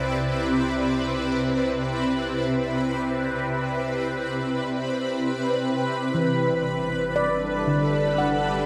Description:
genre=ambient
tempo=59 BPM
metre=4/4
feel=straight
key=unclear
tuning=A4 = 440 Hz
part: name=shimmering ambient pad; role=sustained chords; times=0.0-8.7 s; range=C3 to D5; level=-26 LUFS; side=equal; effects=chorus, built-in reverb, phaser
part: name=warm sub bass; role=bass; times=0.0-8.7 s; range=G1 to C2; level=-44 LUFS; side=equal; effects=none
part: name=organ-like drone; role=drone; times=0.0-5.7 s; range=C3 to C4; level=-34 LUFS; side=equal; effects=ensemble chorus, built-in reverb, phaser
part: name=handpan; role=arpeggios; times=6.1-8.7 s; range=D3 to F#5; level=-27 LUFS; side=equal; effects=tape echo
room=wet huge ambient reverb, RT60 8.8 s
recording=none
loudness=-25 LUFS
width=mono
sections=0.0-5.6 A section; 5.6-8.7 B section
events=fade-out on sub bass 0.0-5.6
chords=0.0 E7(no3)/C; 5.6 G6

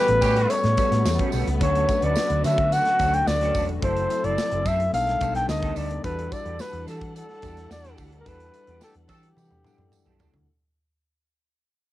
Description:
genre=polished 1980s jazz-funk pop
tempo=108 BPM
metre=4/4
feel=straight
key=E dorian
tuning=A4 = 441 Hz
part: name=breathy flugelhorn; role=melody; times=0.0-10.2 s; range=G4 to G5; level=-24 LUFS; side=equal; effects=cassette tape
part: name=warm horn section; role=second line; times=0.0-0.6, 8.8-9.3 s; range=D3 to A4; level=-28 LUFS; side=right 2 dB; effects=cassette tape
part: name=tine electric piano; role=accompaniment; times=0.0-10.5 s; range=F#3 to F#5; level=-32 LUFS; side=left 8 dB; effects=wide subtle chorus, cassette tape
part: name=warm studio string section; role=sustained chords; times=0.0-10.4 s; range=D3 to F#5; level=-36 LUFS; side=left 1 dB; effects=cassette tape
part: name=electric guitar through a small old amp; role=riff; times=0.1-10.4 s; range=G3 to C5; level=-35 LUFS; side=right 8 dB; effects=ensemble chorus, cassette tape
part: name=hollow-body short-scale fingered electric bass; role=bass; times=0.1-10.5 s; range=E1 to E3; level=-26 LUFS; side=right 1 dB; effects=none
part: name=modern studio drum kit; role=drums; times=0.1-10.5 s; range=hi-hat, kick drum, snare drum, toms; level=-30 LUFS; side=right 1 dB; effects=cassette tape
part: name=tambourine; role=percussion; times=0.2-10.3 s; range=none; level=-42 LUFS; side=right 11 dB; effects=none
room=moderate booth ambience, RT60 0.2 s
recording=home recording on cassette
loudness=-20 LUFS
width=side -15 dB against mid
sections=0.0-10.5 A section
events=fade-out 0.0-10.5; band accent 0.0-1.6, 8.3-10.5; drum fill 9.4-10.5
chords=0.0 A13; 1.6 Dmaj7; 3.8 F#m7b5; 4.9 B7alt; 6.0 Em11

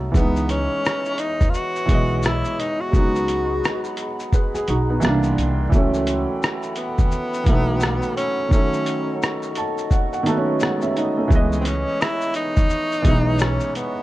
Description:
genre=lo-fi hip hop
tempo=86 BPM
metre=4/4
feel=swing 59% on 16ths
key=C# minor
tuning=A4 = 440 Hz
part: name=felt-muted upright piano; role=accompaniment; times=0.0-14.0 s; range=D#3 to A5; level=-23 LUFS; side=right 2 dB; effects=none
part: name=warbly tape-like pad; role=sustained chords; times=0.0-14.0 s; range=G#4 to C#6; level=-31 LUFS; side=left 2 dB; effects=chorus, built-in reverb
part: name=upright bass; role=bass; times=0.0-13.6 s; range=B1 to D#2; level=-24 LUFS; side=equal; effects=none
part: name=lo-fi sampler-style drum kit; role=drums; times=0.1-13.9 s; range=hi-hat, kick drum, rim click, shaker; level=-20 LUFS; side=equal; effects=none
part: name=breathy tenor saxophone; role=melody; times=0.2-14.0 s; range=B3 to F#4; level=-25 LUFS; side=equal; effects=none
room=light reverb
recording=cassette tape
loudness=-18 LUFS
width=side -16 dB against mid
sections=0.0-11.3 A section; 11.3-14.0 B section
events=felt piano fill 9.2-11.3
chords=0.1 C#m9; 2.9 G#m7/C#; 5.0 C9; 5.7 B7sus4/C#; 8.5 D#m7b5; 11.3 C#m9

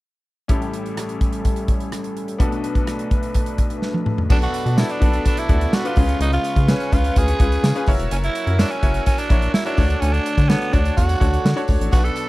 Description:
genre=1980s-style pop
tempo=126 BPM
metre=4/4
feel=straight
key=B minor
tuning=A4 = 440 Hz
part: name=bright grand piano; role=accompaniment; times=0.5-12.3 s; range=A1 to C#5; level=-26 LUFS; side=left 3 dB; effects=none
part: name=chorused pulse-width pad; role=sustained chords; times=0.5-12.3 s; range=G3 to E6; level=-30 LUFS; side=equal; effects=none
part: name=modern studio drum kit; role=drums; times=0.5-12.3 s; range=crash cymbal, hi-hat, kick drum, rim click, snare drum, toms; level=-19 LUFS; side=equal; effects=none
part: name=breathy tenor saxophone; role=melody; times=4.3-12.3 s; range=B3 to A4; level=-24 LUFS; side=right 3 dB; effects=slapback echo
part: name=biting overdriven guitar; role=accompaniment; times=4.3-12.3 s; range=B2 to F#4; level=-34 LUFS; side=equal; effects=none
part: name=rubbery square bass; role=bass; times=4.3-12.1 s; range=E1 to D3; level=-20 LUFS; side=equal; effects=none
part: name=tambourine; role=percussion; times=4.3-12.3 s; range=none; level=-42 LUFS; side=left 4 dB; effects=none
room=little or no reverb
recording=dry, close 1970s-style studio recording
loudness=-17 LUFS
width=side -19 dB against mid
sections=0.5-4.3 A section; 4.3-12.3 B section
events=drum fill 3.8-4.3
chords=0.5 A7; 2.4 Bm7; 6.0 C#7; 7.9 F#7; 9.8 Dmaj7

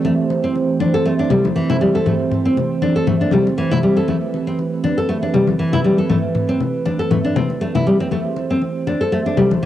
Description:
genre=afro house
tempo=119 BPM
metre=4/4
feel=swing 55% on 16ths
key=A minor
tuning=A4 = 440 Hz
part: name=warm analog pad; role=sustained chords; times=0.0-9.7 s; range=E3 to C5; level=-20 LUFS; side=right 4 dB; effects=chorus, vintage 12-bit sampler grit, cassette tape
part: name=nylon-string guitar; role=arpeggios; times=0.0-9.7 s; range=E3 to A4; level=-18 LUFS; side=left 1 dB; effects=cassette tape, tape echo
part: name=congas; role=percussion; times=0.0-9.6 s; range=none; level=-22 LUFS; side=left 6 dB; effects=none
part: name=electronic toms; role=drums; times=2.1-7.2 s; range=none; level=-24 LUFS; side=left 1 dB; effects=cassette tape
room=light reverb, studio reverb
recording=home recording on cassette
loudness=-15 LUFS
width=side -12 dB against mid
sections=0.0-9.7 A section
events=none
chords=0.0 Am7

